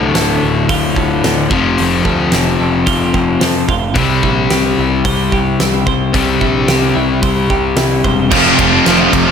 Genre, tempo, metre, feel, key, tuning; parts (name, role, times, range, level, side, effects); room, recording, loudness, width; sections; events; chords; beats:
quiet-loud alternative rock; 110 BPM; 4/4; straight; A4 = 440 Hz
twelve-string electric guitar; arpeggios; 0.0-8.3 s; D2 to C5; -19 LUFS; right 7 dB; tremolo, digital delay
distorted electric guitar; riff; 0.0-9.3 s; D2 to F4; -14 LUFS; left 7 dB; distortion
fuzz picked electric bass; bass; 0.0-9.3 s; D1 to F2; -19 LUFS; right 2 dB; overdrive
huge arena drum kit; drums; 0.1-9.3 s; crash cymbal, hi-hat, kick drum, ride cymbal, snare drum; -18 LUFS; right 1 dB
heavy high-gain guitar; riff; 8.3-9.3 s; F2 to F3; -15 LUFS; right 5 dB; distortion
thick fuzz guitar; riff; 8.3-9.3 s; F2 to F4; -14 LUFS; right 16 dB; distortion
light reverb, small room ambience; -11 LUFS; side -7 dB against mid
0.0-8.3 A section
0.0 Dm; 1.5 F; 4.0 C; 8.3 F
0.14 0.69 1.23 | 1.78 2.32 2.87 3.41 | 3.96 4.50 5.05 5.59 | 6.14 6.68 7.23 7.78 | 8.32 8.86